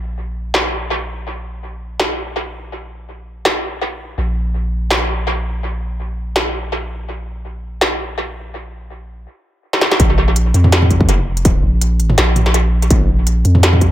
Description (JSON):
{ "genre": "half-time drum and bass", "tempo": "165 BPM", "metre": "4/4", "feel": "swing 55% on 16ths, half-time", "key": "unclear", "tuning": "A4 = 440 Hz", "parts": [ { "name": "long sustained 808-style bass", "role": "bass", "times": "0.0-13.9 s", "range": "F1 to F2", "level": "-17 LUFS", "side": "equal", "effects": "none" }, { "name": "industrial drum kit", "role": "drums", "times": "0.5-13.9 s", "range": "hi-hat, snare drum, toms", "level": "-17 LUFS", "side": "equal", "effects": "low-pass filter on hats, low-pass filter on toms, low-pass filter on snare, low-pass filter on room, analog delay" }, { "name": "electronic kick drum", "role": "drums", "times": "10.0-13.9 s", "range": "none", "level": "-14 LUFS", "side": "equal", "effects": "distortion" } ], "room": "light reverb", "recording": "echo-heavy mix", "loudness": "-14 LUFS", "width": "side -13 dB against mid", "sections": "0.0-10.0 A section; 10.0-13.9 B section", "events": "drum fill 9.7; drop 10.0-13.9", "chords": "none" }